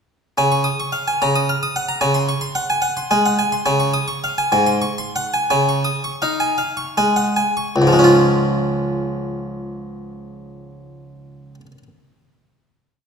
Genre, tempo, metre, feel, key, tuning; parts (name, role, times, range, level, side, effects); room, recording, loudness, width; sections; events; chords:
classical, baroque-style suite movement for harpsichord; 49-75 BPM (dotted quarters); 6/8; rubato; Db major; A4 = 440 Hz
harpsichord; solo; 0.4-11.8 s; Db2 to F6; -16 LUFS; equal
moderate scoring stage reverb, RT60 1.9 s; minimal, uncompressed stereo recording; -16 LUFS; side -6 dB against mid
0.4-7.8 A section; 7.8-12.4 final chord
slowing down 2.8-7.8
0.4 Db; 1.2 Ebm7/Db; 2.0 Ab7/Db; 3.7 Db; 4.5 Ab7; 5.5 Db